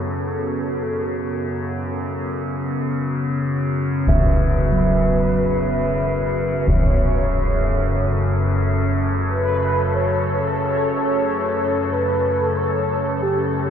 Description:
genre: dark ambient drone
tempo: 46 BPM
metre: 4/4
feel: straight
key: unclear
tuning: A4 = 440 Hz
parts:
  - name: mellow horn-like synth lead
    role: melody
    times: 0.0-13.7 s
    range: G4 to C#5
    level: -24 LUFS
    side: equal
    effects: ensemble chorus, ping-pong delay
  - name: deep dark ambient pad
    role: sustained chords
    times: 0.0-13.7 s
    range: B3 to C#5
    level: -27 LUFS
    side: left 2 dB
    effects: chorus, built-in reverb
  - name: gamelan-type bossed gongs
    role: arpeggios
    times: 0.0-12.5 s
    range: F#3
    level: -28 LUFS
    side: right 3 dB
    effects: ping-pong delay
  - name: overtone-sweeping drone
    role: drone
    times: 0.0-13.7 s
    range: F#2 to C#3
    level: -22 LUFS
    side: left 1 dB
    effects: chorus, built-in reverb, phaser
  - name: bronze singing bowl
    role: texture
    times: 0.0-13.7 s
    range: B4 to E5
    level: -31 LUFS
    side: right 4 dB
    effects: stereo widening
  - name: concert bass drum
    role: percussion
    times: 4.1-6.9 s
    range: none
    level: -22 LUFS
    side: equal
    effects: low-pass filter on kick
room: wet huge ambient reverb, RT60 7.4 s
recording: none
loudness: -18 LUFS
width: side -8 dB against mid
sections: 0.0-13.7 A section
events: fade-in on ambient pad 0.0-13.7; fade-in on soft synth lead 0.0-13.7; fade-out 11.0-13.7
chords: 0.0 Bsus2

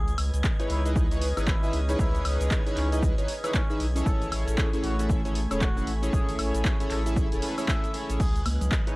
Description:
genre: deep house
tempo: 116 BPM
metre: 4/4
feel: swing 61% on 16ths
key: C# minor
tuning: A4 = 440 Hz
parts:
  - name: trumpet with cup mute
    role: melody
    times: 0.0-8.4 s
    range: C#4 to E5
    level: -39 LUFS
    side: equal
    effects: tape echo
  - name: dark analog pad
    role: sustained chords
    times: 0.0-9.0 s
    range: A3 to D#6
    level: -38 LUFS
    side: equal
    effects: chorus, sidechain pumping
  - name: round analog bass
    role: bass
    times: 0.0-8.7 s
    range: E1 to C#2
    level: -28 LUFS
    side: equal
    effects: tube saturation, sidechain pumping
  - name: rich chamber string section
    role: texture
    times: 0.0-9.0 s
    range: A3 to D#6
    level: -43 LUFS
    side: equal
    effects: none
  - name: soft string machine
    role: texture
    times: 0.0-9.0 s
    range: F#6 to G#6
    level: -48 LUFS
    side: equal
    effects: none
  - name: punchy analog drum machine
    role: drums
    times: 0.1-9.0 s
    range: crash cymbal, handclaps, hi-hat, ride cymbal, shaker, woodblock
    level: -34 LUFS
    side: equal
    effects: none
  - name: electronic kick drum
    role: drums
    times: 0.4-8.8 s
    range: none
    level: -26 LUFS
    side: equal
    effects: none
  - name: chorused polysynth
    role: stabs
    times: 0.6-9.0 s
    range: C#4 to F#5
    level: -31 LUFS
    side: equal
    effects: cassette tape, sidechain pumping
  - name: congas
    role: percussion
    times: 8.5-8.7 s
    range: none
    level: -35 LUFS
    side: right 1 dB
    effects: none
room: little or no reverb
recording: dry, gritty hardware recording, vinyl crackle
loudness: -24 LUFS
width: side -22 dB against mid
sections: 0.0-9.0 A section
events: none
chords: 0.0 C#m9; 4.1 Amaj7; 8.2 C#m9

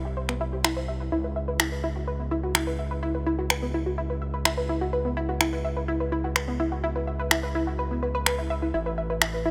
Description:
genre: melodic techno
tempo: 126 BPM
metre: 4/4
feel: straight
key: unclear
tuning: A4 = 440 Hz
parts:
  - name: gritty driven synth bass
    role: bass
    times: 0.0-9.5 s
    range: A1 to C#2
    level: -32 LUFS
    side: equal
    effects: none
  - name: analog pluck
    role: arpeggios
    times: 0.1-9.5 s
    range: B3 to E5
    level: -31 LUFS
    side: equal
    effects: chorus, dub echo
  - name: electronic finger snaps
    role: drums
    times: 0.3-9.3 s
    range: none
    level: -25 LUFS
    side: equal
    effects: overdrive
room: light reverb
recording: none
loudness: -27 LUFS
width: mono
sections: 0.0-9.5 A section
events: none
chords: 0.0 C; 1.1 C#m7; 8.7 A5

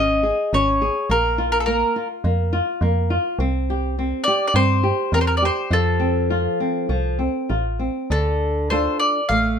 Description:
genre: fado-style ballad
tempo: 103 BPM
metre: 4/4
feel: rubato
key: F major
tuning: A4 = 440 Hz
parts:
  - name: bowl-back mandolin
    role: melody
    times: 0.0-9.6 s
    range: A4 to F5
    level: -20 LUFS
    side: left 1 dB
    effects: none
  - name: flamenco guitar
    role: accompaniment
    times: 0.0-9.6 s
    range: D3 to A4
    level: -23 LUFS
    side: left 1 dB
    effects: none
  - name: metallic FM bass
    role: bass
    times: 0.0-9.6 s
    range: Ab1 to G2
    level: -22 LUFS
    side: right 1 dB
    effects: none
room: moderate studio reverb, RT60 0.6 s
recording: none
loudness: -18 LUFS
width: side -7 dB against mid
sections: 0.0-8.1 A section; 8.1-9.6 B section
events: none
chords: 0.0 Db5; 1.1 Bb5; 3.4 C; 5.7 F; 8.1 Dm

